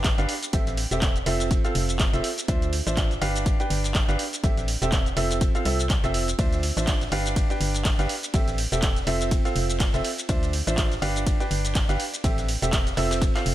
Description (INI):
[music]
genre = piano house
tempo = 123 BPM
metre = 4/4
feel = swing 57% on 16ths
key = D dorian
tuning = A4 = 440 Hz
[part]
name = clear baby grand piano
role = riff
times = 0.0-13.5 s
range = C4 to G5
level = -28 LUFS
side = right 2 dB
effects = sidechain pumping, analog delay
[part]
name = organ-like FM bass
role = bass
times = 0.0-13.5 s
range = E1 to D2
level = -27 LUFS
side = equal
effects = sidechain pumping
[part]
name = breakbeat sampler-style drum kit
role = drums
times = 0.0-13.5 s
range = ride cymbal, snare drum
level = -41 LUFS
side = right 1 dB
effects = none
[part]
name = electronic kick drum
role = drums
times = 0.0-13.3 s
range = none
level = -24 LUFS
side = equal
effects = none
[part]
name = punchy analog drum machine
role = drums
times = 0.0-13.5 s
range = handclaps, hi-hat, ride cymbal, shaker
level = -29 LUFS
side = equal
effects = analog delay
[sound]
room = little or no reverb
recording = echo-heavy mix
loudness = -22 LUFS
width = side -14 dB against mid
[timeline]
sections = 0.0-13.5 A section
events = none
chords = 0.0 G7; 0.5 Am7; 1.3 Fmaj7; 2.5 Dm9; 3.5 G7; 4.4 Am7; 5.2 Fmaj7; 6.4 Dm9; 7.4 G7; 8.3 Am7; 9.1 Fmaj7; 10.3 Dm9; 11.3 G7; 12.2 Am7; 13.0 Fmaj7